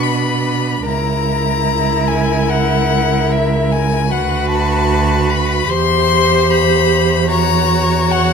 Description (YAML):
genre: classical, slow romantic movement for string quartet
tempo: 74 BPM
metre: 4/4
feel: rubato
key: unclear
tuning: A4 = 440 Hz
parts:
  - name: clear violin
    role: melody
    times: 0.0-8.3 s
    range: E5 to C6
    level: -18 LUFS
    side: left 9 dB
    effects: none
  - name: rich violin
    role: second line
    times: 0.0-8.3 s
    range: A#4 to C#5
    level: -20 LUFS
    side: left 3 dB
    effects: none
  - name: rich viola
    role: accompaniment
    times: 0.0-8.3 s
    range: D4 to G4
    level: -20 LUFS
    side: right 4 dB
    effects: none
  - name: rich cello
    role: bass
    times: 0.0-8.3 s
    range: C#2 to B2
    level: -17 LUFS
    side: right 4 dB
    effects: none
room: moderate recital hall reverb, RT60 1.5 s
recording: none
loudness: -12 LUFS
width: side -6 dB against mid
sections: 0.0-8.3 A section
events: none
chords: 0.0 Bm; 0.9 A#dim/C#; 4.1 Bm/D; 5.7 C/E; 7.3 F#7/E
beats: 0.04 | 0.86 1.67 2.49 3.31 | 4.11 4.90 5.70 6.51 | 7.31 8.11